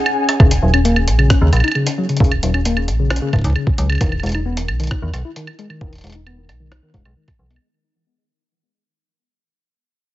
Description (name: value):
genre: IDM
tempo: 133 BPM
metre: 4/4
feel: straight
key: Eb phrygian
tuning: A4 = 440 Hz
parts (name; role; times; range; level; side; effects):
- jungle sampler-style drum kit; drums; 0.1-7.7 s; hi-hat, rim click, woodblock; -22 LUFS; right 2 dB; low-pass filter on hats, small room ambience, low-pass filter on perc, low-pass filter on toms, low-pass filter on snare
- tine electric piano; arpeggios; 0.4-7.6 s; Db3 to E4; -21 LUFS; left 3 dB; medium stereo tremolo, low-pass filter, digital delay
- metallic FM bass; bass; 0.4-7.6 s; Eb1 to E2; -17 LUFS; equal; none
- electronic kick drum; drums; 0.4-7.4 s; none; -15 LUFS; equal; small room ambience
room: light reverb, digital ambience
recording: heavily compressed radio sound, multiband compression, nothing above 7.7 kHz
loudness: -14 LUFS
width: side -15 dB against mid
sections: 0.4-7.6 A section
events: break 0.0-0.4; fade-out 0.4-7.6; filter sweep on FM bass 0.4-7.6; filter sweep on tine electric piano 0.4-7.6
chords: 0.4 Eb7(no3); 4.0 Emaj7(no3)